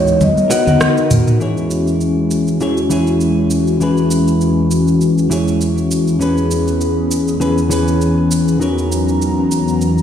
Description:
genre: sunset chillout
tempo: 100 BPM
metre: 4/4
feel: swing 55% on 16ths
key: E lydian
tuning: A4 = 441 Hz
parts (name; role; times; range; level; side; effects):
- vibraphone with soft mallets; melody; 0.0-1.1 s; C#5 to D#5; -17 LUFS; left 1 dB; digital delay
- clean electric guitar; accompaniment; 0.0-10.0 s; E3 to F#5; -17 LUFS; left 1 dB; auto-pan, vintage 12-bit sampler grit, digital delay
- airy breathy pad; sustained chords; 0.0-10.0 s; E2 to A#5; -16 LUFS; equal; chorus
- smooth R&B drum kit; drums; 0.1-10.0 s; cabasa, hi-hat, rim click, toms; -21 LUFS; right 1 dB; none
- congas; percussion; 0.2-1.2 s; none; -19 LUFS; left 2 dB; none
room: moderate plate reverb, RT60 2.0 s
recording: played on a big sound system in a bare room, stone room reverb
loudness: -12 LUFS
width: side -9 dB against mid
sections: 0.0-1.4 A section; 1.4-10.0 B section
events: drum fill 0.2-1.4; filter sweep on analog synth pad 1.4-10.0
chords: 0.2 Bmaj7; 1.4 E6; 8.6 C#m13/E

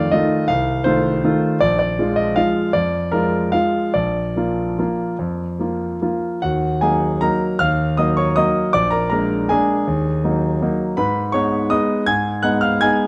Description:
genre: classical, piano waltz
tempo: 141-172 BPM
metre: 3/4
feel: rubato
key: Eb minor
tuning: A4 = 440 Hz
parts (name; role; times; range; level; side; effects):
- clear concert grand piano; solo; 0.0-13.1 s; Bb1 to Ab6; -19 LUFS; equal; none
room: moderate recital hall reverb, RT60 1.6 s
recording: close, detailed microphones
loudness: -19 LUFS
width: mono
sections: 0.0-6.4 A section; 6.4-13.1 B section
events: none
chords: 0.0 F7; 1.6 Bb7; 3.9 Bb; 6.4 Ebm; 8.7 Bb7; 9.9 Ebm; 11.0 Abm

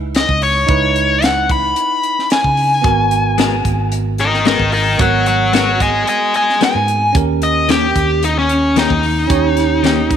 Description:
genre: straight-eighth soul blues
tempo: 111 BPM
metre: 4/4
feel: straight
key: G# minor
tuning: A4 = 440 Hz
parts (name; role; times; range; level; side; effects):
- bell-like tine electric piano; accompaniment; 0.0-10.2 s; B3 to C#5; -22 LUFS; right 14 dB; medium stereo tremolo
- vintage muted fingered electric bass; bass; 0.0-10.2 s; G#1 to C#3; -19 LUFS; right 1 dB; none
- tight funk drum kit; drums; 0.1-10.2 s; hi-hat, kick drum, snare drum; -19 LUFS; equal; none
- smooth overdriven lead guitar; melody; 0.2-10.2 s; C#4 to B5; -15 LUFS; left 2 dB; none
- clean electric guitar; stabs; 3.4-10.0 s; D#3 to A#4; -22 LUFS; left 10 dB; spring reverb
room: moderate echo chamber reverb, RT60 1.8 s, small room ambience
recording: 1960s-style stereo with parts hard left and right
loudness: -12 LUFS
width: side -8 dB against mid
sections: 0.0-10.2 A section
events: lead electric guitar solo 0.0-10.2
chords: 0.0 C#m9; 2.8 G#m9; 7.1 D#7

